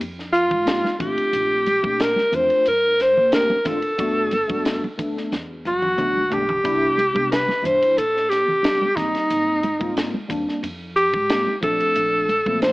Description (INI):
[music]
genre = electric jazz fusion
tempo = 90 BPM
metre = 4/4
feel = straight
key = unclear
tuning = A4 = 441 Hz
[part]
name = upright bass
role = bass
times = 0.0-12.7 s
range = G1 to C3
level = -35 LUFS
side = equal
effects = none
[part]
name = crisp fusion drum kit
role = drums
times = 0.0-12.7 s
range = hi-hat, kick drum, ride cymbal, snare drum, toms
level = -29 LUFS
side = equal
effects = none
[part]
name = tine electric piano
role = accompaniment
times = 0.2-12.7 s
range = B2 to A4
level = -27 LUFS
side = left 1 dB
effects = analog chorus
[part]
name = breathy alto saxophone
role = melody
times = 0.3-12.7 s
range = Eb4 to C5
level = -18 LUFS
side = equal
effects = none
[part]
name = congas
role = percussion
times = 0.5-12.6 s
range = none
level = -31 LUFS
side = right 1 dB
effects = none
[sound]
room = light reverb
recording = AM radio sound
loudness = -18 LUFS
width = side -20 dB against mid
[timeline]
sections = 0.0-12.7 A section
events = drum fill 5.3-6.6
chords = 0.0 Abmaj9; 1.0 Bbmaj9; 4.0 Gmaj9; 6.6 Cmaj9; 9.0 Abmaj9; 11.6 Bbmaj9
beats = 0.01 0.67 | 1.33 2.00 2.66 3.33 | 3.99 4.65 5.32 5.98 | 6.65 7.31 7.97 8.64 | 9.30 9.96 10.63 11.29 | 11.95 12.62